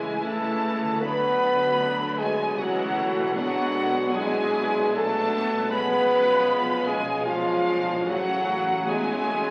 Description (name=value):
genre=classical, slow romantic movement for symphony orchestra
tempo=76 BPM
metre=3/4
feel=rubato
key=F# minor from 3.3 s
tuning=A4 = 444 Hz
part: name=clear chamber violin section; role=melody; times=0.0-9.5 s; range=E#5 to B5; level=-34 LUFS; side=equal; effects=none
part: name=large flute ensemble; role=second line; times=0.0-9.5 s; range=E#5 to B5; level=-35 LUFS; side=equal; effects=none
part: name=rich symphonic violin section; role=second line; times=0.0-9.5 s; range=A3 to E4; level=-39 LUFS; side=equal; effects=none
part: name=rich chamber viola section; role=accompaniment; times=0.0-9.5 s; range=D3 to B3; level=-34 LUFS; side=equal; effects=none
part: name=bright trombone section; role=sustained chords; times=0.0-9.5 s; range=C#3 to A3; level=-37 LUFS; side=equal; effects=none
part: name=warm French horn section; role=sustained chords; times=0.0-9.5 s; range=E#3 to B3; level=-30 LUFS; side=equal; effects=none
part: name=concert harp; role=arpeggios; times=0.0-9.5 s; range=A2 to F#4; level=-42 LUFS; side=equal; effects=none
part: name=rich chamber cello section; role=bass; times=0.0-9.5 s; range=A2 to D3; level=-40 LUFS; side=equal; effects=none
part: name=warm chamber double bass section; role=bass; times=0.0-9.5 s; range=A1 to D2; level=-44 LUFS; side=equal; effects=none
part: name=mellow clarinet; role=second line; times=0.2-9.5 s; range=E#4 to B4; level=-34 LUFS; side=equal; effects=none
part: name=mellow trumpet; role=stabs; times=0.2-9.5 s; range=E#4 to B4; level=-31 LUFS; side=equal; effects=none
room=wet recital hall reverb, RT60 1.3 s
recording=very old 78 rpm record, vinyl crackle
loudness=-24 LUFS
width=mono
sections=0.0-9.5 A section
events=none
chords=0.0 A/C#; 3.3 G#m7b5/B; 5.7 C#7/B; 8.1 F#m/A